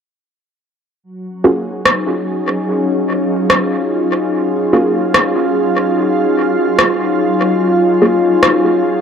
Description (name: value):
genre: ambient dub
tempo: 73 BPM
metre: 4/4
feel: swing 54% on 16ths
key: Eb minor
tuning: A4 = 440 Hz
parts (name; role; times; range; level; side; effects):
- soft additive organ-like pad; sustained chords; 1.2-9.0 s; Gb3 to Ab4; -14 LUFS; equal; ensemble chorus, built-in reverb
- filtered dub chord stab; stabs; 1.4-8.3 s; Bb3 to Ab4; -16 LUFS; right 1 dB; chorus, cassette tape, dub echo
- electronic rim click; drums; 1.9-8.6 s; none; -16 LUFS; equal; dub echo
room: moderate spring reverb, RT60 2.5 s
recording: echo-heavy mix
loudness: -12 LUFS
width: side -7 dB against mid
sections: 1.0-9.0 A section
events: filter sweep on ambient pad 1.0-9.0; filter sweep on synth stab 1.0-9.0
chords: 1.0 Ebm11